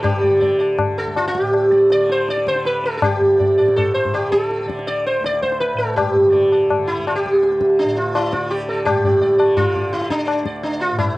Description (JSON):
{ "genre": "indian classical, Hindustani", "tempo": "164 BPM", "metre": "4/4", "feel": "straight", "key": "D raga bhimpalasi", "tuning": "A4 = 441 Hz", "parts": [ { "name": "sitar", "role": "melody", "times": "0.0-11.2 s", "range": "D4 to D5", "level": "-16 LUFS", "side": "equal", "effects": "cassette tape" }, { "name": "tanpura", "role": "drone", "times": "0.0-11.2 s", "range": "D2 to D3", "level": "-28 LUFS", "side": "right 1 dB", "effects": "none" }, { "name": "tabla", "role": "percussion", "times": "0.0-11.1 s", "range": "none", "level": "-22 LUFS", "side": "left 3 dB", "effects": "none" } ], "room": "light reverb", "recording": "home recording on cassette", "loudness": "-15 LUFS", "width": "side -19 dB against mid", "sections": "0.0-8.9 A section; 8.9-11.2 B section", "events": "speeding up 0.0-11.2", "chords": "none", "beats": "| 0.03 0.41 0.78 1.16 | 1.54 1.91 2.28 2.66 | 3.03 3.40 3.77 4.14 | 4.51 4.88 5.24 5.61 | 5.97 6.34 6.70 7.06 | 7.42 7.78 8.14 8.50 | 8.86 9.22 9.57 9.93 | 10.28 10.63 10.99" }